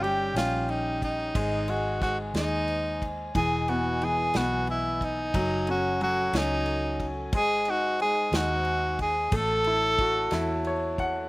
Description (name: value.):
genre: six-eight pop ballad.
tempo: 60 BPM (dotted quarters).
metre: 6/8.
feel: straight.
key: unclear.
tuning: A4 = 440 Hz.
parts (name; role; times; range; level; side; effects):
breathy tenor saxophone; melody; 0.0-10.7 s; D#4 to A4; -27 LUFS; equal; none.
clear grand piano; accompaniment; 0.0-11.3 s; E3 to F#5; -31 LUFS; left 1 dB; slapback echo.
mellow brass ensemble; sustained chords; 0.0-11.3 s; E3 to A5; -36 LUFS; equal; none.
vintage muted fingered electric bass; bass; 0.0-11.3 s; E1 to E2; -33 LUFS; equal; none.
unplugged drum kit; drums; 0.0-11.1 s; kick drum, ride cymbal, snare drum; -34 LUFS; equal; none.
room: little or no reverb.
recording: recorded outdoors, with no room sound.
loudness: -24 LUFS.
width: side -21 dB against mid.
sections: 0.0-11.3 A section.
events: grand piano fill 10.3-11.3.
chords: 0.0 D#7/G; 1.4 G#; 3.3 Emaj7; 5.3 F#madd9; 7.3 G#; 9.3 A6.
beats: 0.36 | 1.35 2.35 | 3.34 4.34 | 5.34 6.33 | 7.33 8.32 | 9.32 10.31.